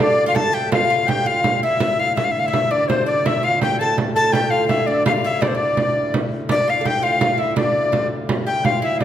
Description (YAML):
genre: medieval dance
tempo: 111 BPM (dotted quarters)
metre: 6/8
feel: straight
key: D minor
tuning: A4 = 440 Hz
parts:
  - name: bright reedy tenor recorder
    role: melody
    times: 0.0-9.0 s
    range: C5 to A5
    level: -19 LUFS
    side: left 2 dB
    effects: none
  - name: bright shawm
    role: second line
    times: 0.0-9.0 s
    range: C5 to A5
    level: -26 LUFS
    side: left 5 dB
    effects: none
  - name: oud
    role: second line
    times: 0.0-9.0 s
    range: D4 to A4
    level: -26 LUFS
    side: right 4 dB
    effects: none
  - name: pedal harmonium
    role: drone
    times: 0.0-9.0 s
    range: D2 to A2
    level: -28 LUFS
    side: equal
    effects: none
  - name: frame drum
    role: percussion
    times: 0.4-9.0 s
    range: none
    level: -23 LUFS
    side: right 3 dB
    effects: none
room: wet recital hall reverb, RT60 1.6 s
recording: none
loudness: -16 LUFS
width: side -10 dB against mid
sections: 0.0-6.5 A section; 6.5-9.0 B section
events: none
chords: none